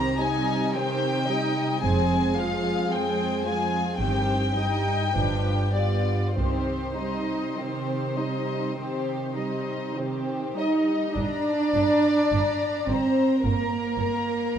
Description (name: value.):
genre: classical, slow romantic movement for string orchestra.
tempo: 48-57 BPM.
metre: 4/4.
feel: rubato.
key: C minor, G minor from 11.2 s.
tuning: A4 = 445 Hz.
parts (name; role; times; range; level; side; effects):
warm symphonic violin section; melody; 0.0-14.6 s; C5 to Bb5; -30 LUFS; left 4 dB; none.
dark studio violin section; second line; 0.0-14.6 s; Eb4 to Eb5; -29 LUFS; left 3 dB; none.
warm chamber viola section; accompaniment; 0.0-14.6 s; Eb3 to Eb4; -29 LUFS; right 3 dB; none.
dark studio cello section; bass; 0.0-14.6 s; F2 to Eb4; -28 LUFS; right 2 dB; none.
warm chamber double bass section; bass; 0.0-14.6 s; F1 to C2; -30 LUFS; right 2 dB; none.
room: wet recital hall reverb, RT60 1.7 s.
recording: dark, warm production.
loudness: -23 LUFS.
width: side -8 dB against mid.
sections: 0.0-11.2 A section; 11.2-14.6 B section.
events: none.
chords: 0.0 Cm; 1.8 Fm; 4.0 Cm/G; 5.2 G7; 6.4 Cm; 11.2 Gm (rootless).